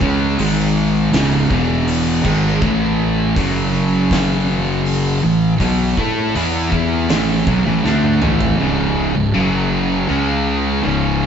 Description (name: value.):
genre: stoner and doom metal.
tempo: 80 BPM.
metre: 4/4.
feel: straight.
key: C# minor.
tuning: A4 = 440 Hz.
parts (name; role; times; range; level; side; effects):
distorted electric guitar; riff; 0.0-11.3 s; C#2 to A4; -21 LUFS; equal; distortion.
thick fuzz guitar; riff; 0.0-11.3 s; C#2 to A4; -19 LUFS; left 6 dB; distortion.
thick fuzz guitar; riff; 0.0-11.3 s; C#2 to A4; -20 LUFS; right 6 dB; distortion.
fuzz fingered electric bass; bass; 0.0-11.3 s; C#1 to A2; -24 LUFS; right 1 dB; overdrive.
oversized low-tuned drum kit; drums; 0.0-8.6 s; crash cymbal, hi-hat, kick drum, snare drum, toms; -23 LUFS; right 1 dB; none.
room: moderate stone room reverb, RT60 1.1 s.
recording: band playing live in one room, nothing above 7.8 kHz.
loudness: -14 LUFS.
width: side -8 dB against mid.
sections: 0.0-8.6 A section; 8.6-11.3 B section.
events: drum fill 7.8-8.6.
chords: 0.4 G#5; 1.1 C#5; 1.5 E5; 2.2 G#5; 2.6 A5; 3.4 F#5; 5.2 A5; 8.6 C#5; 9.3 F#5; 10.1 C#5.